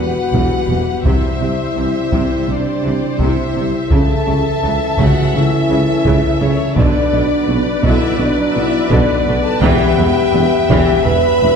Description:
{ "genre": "cinematic, epic orchestral film score", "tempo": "84 BPM", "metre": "4/4", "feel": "straight", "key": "E minor", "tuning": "A4 = 441 Hz", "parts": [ { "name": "warm symphonic violin section", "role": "melody", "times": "0.0-11.6 s", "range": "B4 to E5", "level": "-23 LUFS", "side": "left 3 dB", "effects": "none" }, { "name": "clear chamber violin section", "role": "second line", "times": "0.0-11.6 s", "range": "C#5 to B5", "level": "-23 LUFS", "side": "left 4 dB", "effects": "none" }, { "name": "rich studio viola section", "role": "accompaniment", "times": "0.0-11.6 s", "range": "C3 to B4", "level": "-23 LUFS", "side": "equal", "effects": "none" }, { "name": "dark French horn section", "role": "sustained chords", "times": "0.0-11.6 s", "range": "C#4 to B4", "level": "-18 LUFS", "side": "left 2 dB", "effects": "none" }, { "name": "warm trombone section", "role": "sustained chords", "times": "0.0-11.6 s", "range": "E3 to C#4", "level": "-25 LUFS", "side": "right 1 dB", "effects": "none" }, { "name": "dark symphonic cello section", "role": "bass", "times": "0.0-11.5 s", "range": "E2 to C#3", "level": "-22 LUFS", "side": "right 2 dB", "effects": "none" }, { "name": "mellow tuba", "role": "bass", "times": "0.0-11.6 s", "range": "E1 to C#2", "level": "-22 LUFS", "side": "right 2 dB", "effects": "none" }, { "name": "warm symphonic double bass section", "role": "bass", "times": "0.0-11.5 s", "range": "E1 to C#2", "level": "-22 LUFS", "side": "right 2 dB", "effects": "none" }, { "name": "taiko ensemble", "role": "drums", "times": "0.3-11.4 s", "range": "none", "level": "-19 LUFS", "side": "equal", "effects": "none" } ], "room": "wet scoring stage reverb, RT60 1.8 s", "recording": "heard from further back in the room", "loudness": "-12 LUFS", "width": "side -6 dB against mid", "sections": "0.0-11.6 A section", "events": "none", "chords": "0.0 Em; 1.1 C; 3.9 A/C#; 6.8 Bm; 9.6 Em" }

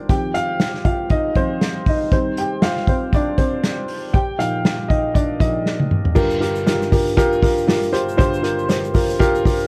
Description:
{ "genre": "piano-driven pop", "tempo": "119 BPM", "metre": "4/4", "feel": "swing 56% on 16ths", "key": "unclear", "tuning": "A4 = 442 Hz", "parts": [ { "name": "dark upright piano", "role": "accompaniment", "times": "0.0-9.7 s", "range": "G1 to G5", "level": "-22 LUFS", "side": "equal", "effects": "none" }, { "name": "unplugged drum kit", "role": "drums", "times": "0.1-9.6 s", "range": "crash cymbal, hi-hat, kick drum, snare drum, toms", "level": "-21 LUFS", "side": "equal", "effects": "none" }, { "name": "egg shaker", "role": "percussion", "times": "6.2-9.7 s", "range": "none", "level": "-47 LUFS", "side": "equal", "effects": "none" } ], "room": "moderate studio reverb, RT60 0.5 s", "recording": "worn, warbling old tape, cassette tape, warbly pitch drift", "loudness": "-19 LUFS", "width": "mono", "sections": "0.0-6.2 A section; 6.2-9.7 B section", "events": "upright piano solo 0.0-6.2; drum fill 5.7-6.2", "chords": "0.1 Eb69; 2.1 Cm/Eb; 4.1 Bbsus4; 6.2 Gm7" }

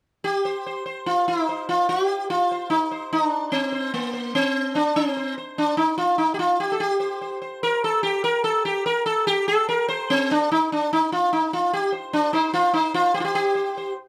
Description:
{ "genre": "indian classical", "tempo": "146 BPM", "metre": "4/4", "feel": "straight", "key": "C raga kafi", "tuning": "A4 = 440 Hz", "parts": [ { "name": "sitar", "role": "solo", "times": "0.2-14.0 s", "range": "Bb3 to C5", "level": "-23 LUFS", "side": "equal", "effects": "none" } ], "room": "light reverb", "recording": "close, detailed microphones", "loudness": "-23 LUFS", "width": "mono", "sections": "0.2-13.4 A section", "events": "none", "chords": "none" }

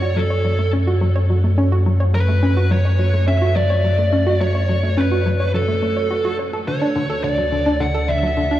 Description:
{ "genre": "ambient, sequencer-driven space music", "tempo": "106 BPM", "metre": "4/4", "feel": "straight", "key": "F# minor", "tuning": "A4 = 440 Hz", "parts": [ { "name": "fuzz lead guitar", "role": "melody", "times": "0.0-8.6 s", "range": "A4 to F#5", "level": "-22 LUFS", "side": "equal", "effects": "distortion, tape echo" }, { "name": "string machine, full ensemble", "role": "sustained chords", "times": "0.0-8.6 s", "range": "A3 to F#5", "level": "-33 LUFS", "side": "equal", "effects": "ensemble chorus" }, { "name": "hollow square pluck", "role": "riff", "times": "0.0-8.6 s", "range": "D3 to C#5", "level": "-22 LUFS", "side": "equal", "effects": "chorus, tape echo" }, { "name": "round analog bass", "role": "bass", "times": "0.0-8.6 s", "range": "D2 to F#2", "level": "-18 LUFS", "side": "equal", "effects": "none" } ], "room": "moderate huge ambient reverb, RT60 7.6 s", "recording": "worn, warbling old tape, cassette tape, warbly pitch drift, small room ambience", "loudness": "-16 LUFS", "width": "side -13 dB against mid", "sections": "0.0-8.6 A section", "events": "fade-in on string machine 0.0-8.6", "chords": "0.0 F#m; 6.7 D" }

